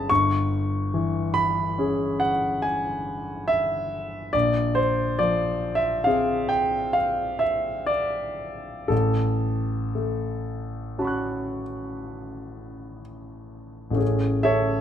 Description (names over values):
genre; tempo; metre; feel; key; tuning
classical, impressionist solo piano; 57-72 BPM; 5/4; rubato; unclear; A4 = 440 Hz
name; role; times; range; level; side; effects
clear grand piano; solo; 0.0-14.8 s; G1 to F#6; -23 LUFS; equal; none
room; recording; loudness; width
light reverb; close, detailed microphones; -22 LUFS; side -9 dB against mid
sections
0.0-14.0 A section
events
none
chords
0.1 C#m7/G; 4.3 Bb9; 8.9 A69; 14.0 Amaj7